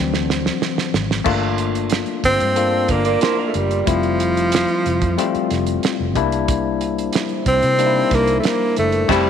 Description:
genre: lush 1970s-style soul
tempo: 92 BPM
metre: 4/4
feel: straight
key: G dorian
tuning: A4 = 441 Hz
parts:
  - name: bell-like tine electric piano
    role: accompaniment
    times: 0.0-9.3 s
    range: E3 to A4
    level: -21 LUFS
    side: left 9 dB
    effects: medium stereo tremolo
  - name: mellow French horn section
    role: sustained chords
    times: 0.0-1.2, 6.5-9.3 s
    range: Bb2 to E5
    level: -31 LUFS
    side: right 12 dB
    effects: none
  - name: vintage muted fingered electric bass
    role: bass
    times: 0.0-9.3 s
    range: F1 to C3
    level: -24 LUFS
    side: right 1 dB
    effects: none
  - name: cloth-damped thuddy drum kit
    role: drums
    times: 0.1-9.3 s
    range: crash cymbal, hi-hat, kick drum, snare drum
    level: -22 LUFS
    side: right 5 dB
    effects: none
  - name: breathy tenor saxophone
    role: melody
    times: 2.3-9.3 s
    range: F3 to C4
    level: -18 LUFS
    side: right 1 dB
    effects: none
  - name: electric guitar through a small old amp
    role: riff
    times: 2.9-3.9, 9.1-9.3 s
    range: C4 to D5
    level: -24 LUFS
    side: right 13 dB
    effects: none
room: moderate echo chamber reverb, RT60 2.6 s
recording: 1960s-style stereo with parts hard left and right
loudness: -16 LUFS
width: side -8 dB against mid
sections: 0.0-1.3 A section; 1.3-9.3 B section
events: drum fill 0.0-1.3; tine electric piano solo 0.0-1.3; band accent 9.1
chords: 0.0 D7; 1.3 Gm7; 3.9 Fmaj9; 6.2 C9

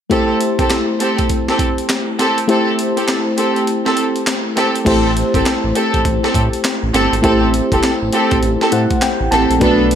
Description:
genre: R&B, new jack swing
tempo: 101 BPM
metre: 4/4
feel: swing 62% on 16ths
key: A minor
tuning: A4 = 441 Hz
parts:
  - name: FM electric piano with tremolo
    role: accompaniment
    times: 0.1-10.0 s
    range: A3 to A5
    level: -17 LUFS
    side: left 2 dB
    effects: none
  - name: dark studio string section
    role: stabs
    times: 0.1-9.8 s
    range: B3 to A4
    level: -17 LUFS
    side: right 3 dB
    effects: none
  - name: breakbeat sampler-style drum kit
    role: drums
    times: 0.1-10.0 s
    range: crash cymbal, handclaps, hi-hat, kick drum, snare drum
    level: -20 LUFS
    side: equal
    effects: none
  - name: smooth synth bass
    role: bass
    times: 4.9-10.0 s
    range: G1 to A2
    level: -20 LUFS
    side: equal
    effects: none
room: light reverb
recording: none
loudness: -13 LUFS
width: side -8 dB against mid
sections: 0.1-4.9 A section; 4.9-10.0 B section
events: kick muted 2.5-4.9; FM electric piano fill 8.4-9.6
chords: 0.1 Am7

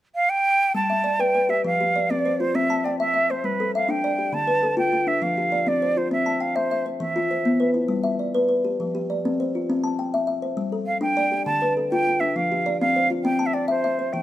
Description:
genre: southern african traditional, mbira-style interlocking cycle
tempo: 134 BPM (dotted quarters)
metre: 12/8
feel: straight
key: G mixolydian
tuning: A4 = 440 Hz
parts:
  - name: jazz flute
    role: melody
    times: 0.2-7.7, 10.9-14.2 s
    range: B4 to A5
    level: -22 LUFS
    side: right 2 dB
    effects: none
  - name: kalimba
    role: arpeggios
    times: 0.7-14.2 s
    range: D3 to A5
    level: -23 LUFS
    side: left 2 dB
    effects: none
room: light reverb, studio reverb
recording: rough home demo mix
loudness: -20 LUFS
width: side -13 dB against mid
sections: 0.8-14.2 A section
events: none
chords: 0.0 N.C.; 0.8 G; 1.6 F5; 2.5 C; 3.4 G; 4.3 Dm; 5.2 F5; 6.1 C; 7.0 E5; 7.9 G; 8.8 F5; 9.7 C; 10.6 G5; 11.5 Dm; 12.4 F5; 13.2 C

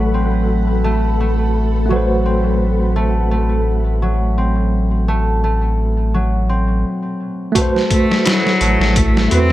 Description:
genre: trip hop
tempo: 85 BPM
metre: 4/4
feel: swing 54% on 16ths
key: A dorian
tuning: A4 = 440 Hz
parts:
  - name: mellow tine electric piano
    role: accompaniment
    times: 0.0-9.5 s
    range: A3 to C5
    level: -22 LUFS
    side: right 2 dB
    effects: medium stereo tremolo
  - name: string machine, cellos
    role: sustained chords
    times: 0.0-9.5 s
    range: A4 to B5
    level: -25 LUFS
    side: left 1 dB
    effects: ensemble chorus
  - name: concert harp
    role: arpeggios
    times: 0.0-9.5 s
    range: F#3 to B4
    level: -21 LUFS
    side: equal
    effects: vintage 12-bit sampler grit, tape echo
  - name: warm sub bass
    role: bass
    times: 0.0-9.5 s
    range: A1 to E2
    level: -17 LUFS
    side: equal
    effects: none
  - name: trip hop sampler-style drum kit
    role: drums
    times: 7.6-9.5 s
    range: hi-hat, kick drum, snare drum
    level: -17 LUFS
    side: equal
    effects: none
  - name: clear cello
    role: melody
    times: 7.9-9.5 s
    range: F#3 to C4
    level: -16 LUFS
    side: left 1 dB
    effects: dub echo
room: little or no reverb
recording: none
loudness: -14 LUFS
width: side -15 dB against mid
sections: 0.0-7.6 A section; 7.6-9.5 B section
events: filter sweep on string machine 0.0-7.6; stop 6.8-7.6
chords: 0.0 Am69

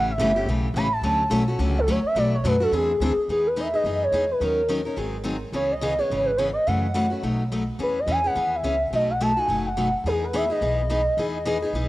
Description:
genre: acoustic string swing (jazz manouche)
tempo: 213 BPM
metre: 4/4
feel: swing 58% on 8ths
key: A major, E major from 3.3 s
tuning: A4 = 439 Hz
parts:
  - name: pure sine lead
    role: melody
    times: 0.0-11.9 s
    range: G#4 to B5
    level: -23 LUFS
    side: equal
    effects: chorus, cassette tape
  - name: picked steel-string acoustic guitar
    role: accompaniment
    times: 0.0-11.9 s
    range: B2 to A#4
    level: -26 LUFS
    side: left 2 dB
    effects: cassette tape
  - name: upright bass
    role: bass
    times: 0.0-11.9 s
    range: F#1 to F#2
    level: -28 LUFS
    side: equal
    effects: none
room: light reverb, small room ambience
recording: home recording on cassette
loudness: -21 LUFS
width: side -17 dB against mid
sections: 0.0-3.3 A section; 3.3-11.9 B section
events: soft synth lead solo 0.0-3.3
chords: 0.0 A7; 1.0 Dmaj7; 2.2 Bm7; 2.7 Eaug7; 3.3 Emaj7; 4.4 D#m7; 5.0 G#7; 5.5 C#m9; 6.7 F#m7; 7.2 B7; 7.8 E6; 8.9 B7; 10.1 Emaj7

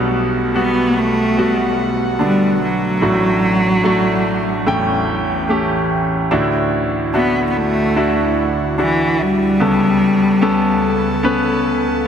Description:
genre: pop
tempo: 73 BPM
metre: 4/4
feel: straight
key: D major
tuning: A4 = 440 Hz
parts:
  - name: clear concert grand piano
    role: accompaniment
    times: 0.0-12.1 s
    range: A1 to G5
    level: -17 LUFS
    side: equal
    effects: none
  - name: airy breathy pad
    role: sustained chords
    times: 0.0-12.1 s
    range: C#2 to G5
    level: -22 LUFS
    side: right 1 dB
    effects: chorus
  - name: warm cello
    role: melody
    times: 0.6-11.7 s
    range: E3 to B3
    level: -17 LUFS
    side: equal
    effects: none
room: moderate lush hall reverb, RT60 2.7 s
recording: none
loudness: -14 LUFS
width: side -8 dB against mid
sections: 0.0-12.1 A section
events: none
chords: 0.0 Gmaj7/B; 3.0 D/A; 4.7 A7; 6.3 Dadd9; 9.6 Aadd9/C#

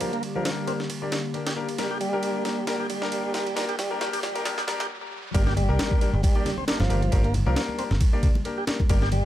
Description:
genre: breakbeat, breaks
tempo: 135 BPM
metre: 4/4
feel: swing 56% on 16ths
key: G minor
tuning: A4 = 442 Hz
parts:
  - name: warbly tape-like pad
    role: sustained chords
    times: 0.0-5.3 s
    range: D3 to G4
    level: -35 LUFS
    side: left 1 dB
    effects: chorus, built-in reverb, vintage 12-bit sampler grit, sidechain pumping
  - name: tonewheel organ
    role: riff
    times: 0.0-9.2 s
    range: F3 to G4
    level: -30 LUFS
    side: right 1 dB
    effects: overdrive, slow rotary speaker, low-pass filter, ping-pong delay
  - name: clear concert grand piano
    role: stabs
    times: 0.0-9.0 s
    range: Bb3 to D5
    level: -31 LUFS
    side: left 3 dB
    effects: low-pass filter, ping-pong delay
  - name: breakbeat sampler-style drum kit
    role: drums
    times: 0.0-9.2 s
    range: kick drum, ride cymbal, snare drum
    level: -26 LUFS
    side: equal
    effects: high-pass filter on kick, high-pass filter on cymbals, high-pass filter on snare
  - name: riser and impact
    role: sound effects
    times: 1.7-7.1 s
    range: none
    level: -39 LUFS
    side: right 1 dB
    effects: none
  - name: picked electric bass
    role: bass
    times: 5.3-9.2 s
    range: G1 to C2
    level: -23 LUFS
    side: equal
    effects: none
  - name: congas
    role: percussion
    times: 5.6-9.2 s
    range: none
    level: -34 LUFS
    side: left 3 dB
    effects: none
room: light reverb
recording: high-pass filter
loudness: -23 LUFS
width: side -13 dB against mid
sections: 0.0-5.3 A section; 5.3-9.2 B section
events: build-up 0.0-5.3; filter sweep on tonewheel organ 0.0-5.3; filter sweep on grand piano 0.0-5.3; filter sweep 0.0-5.3; drum fill 1.8-4.9; break 4.9-5.3; drop 5.3-9.2; impact 5.3-7.1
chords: 0.0 Gm

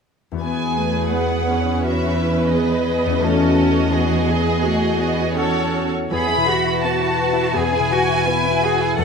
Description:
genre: cinematic, emotional film score for orchestra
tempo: 84 BPM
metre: 4/4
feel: rubato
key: E major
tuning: A4 = 444 Hz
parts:
  - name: concert harp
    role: arpeggios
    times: 0.3-9.0 s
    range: E2 to B4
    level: -23 LUFS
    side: left 6 dB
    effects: none
  - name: warm studio violin section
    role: second line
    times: 0.4-9.0 s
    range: A3 to G#5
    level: -22 LUFS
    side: equal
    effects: none
  - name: warm symphonic viola section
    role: accompaniment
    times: 0.4-9.0 s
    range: E3 to A4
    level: -22 LUFS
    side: right 2 dB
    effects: none
  - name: rich symphonic cello section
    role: bass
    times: 0.4-9.0 s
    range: E2 to A4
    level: -22 LUFS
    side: right 3 dB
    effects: none
  - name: rich symphonic violin section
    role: melody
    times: 6.1-9.0 s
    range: F#5 to B5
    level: -20 LUFS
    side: left 1 dB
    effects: none
room: moderate scoring stage reverb, RT60 1.9 s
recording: close, detailed microphones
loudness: -16 LUFS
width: side -5 dB against mid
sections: 0.4-6.1 A section; 6.1-9.0 B section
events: none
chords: 0.4 Esus2

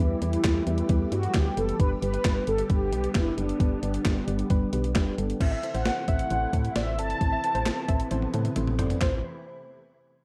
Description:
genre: synth-pop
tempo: 133 BPM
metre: 4/4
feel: straight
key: A dorian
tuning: A4 = 442 Hz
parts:
  - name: mellow synth brass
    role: melody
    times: 0.0-8.5 s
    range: D4 to A5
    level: -32 LUFS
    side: equal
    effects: chorus
  - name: mellow FM electric piano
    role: accompaniment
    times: 0.0-9.2 s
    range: G3 to D5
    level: -35 LUFS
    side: equal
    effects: chorus, phaser
  - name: soft string machine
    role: sustained chords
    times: 0.0-9.2 s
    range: C3 to G4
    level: -39 LUFS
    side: equal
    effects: phaser, ensemble chorus
  - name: solid FM bass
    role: bass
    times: 0.0-9.2 s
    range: F#1 to A2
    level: -32 LUFS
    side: equal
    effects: none
  - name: gated 80s digital drum machine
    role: drums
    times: 0.2-9.1 s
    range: crash cymbal, handclaps, hi-hat, kick drum, snare drum, toms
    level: -29 LUFS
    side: equal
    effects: gated reverb, gated reverb snare
  - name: soft round pluck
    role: second line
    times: 5.5-9.2 s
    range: C5 to E5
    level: -39 LUFS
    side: equal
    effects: chorus, analog delay
room: light reverb, digital ambience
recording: dark, warm production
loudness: -26 LUFS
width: mono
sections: 0.0-5.4 A section; 5.4-9.0 B section; 9.0-10.2 C section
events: drum fill 8.1-9.0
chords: 0.0 Em; 1.8 G; 5.4 Am

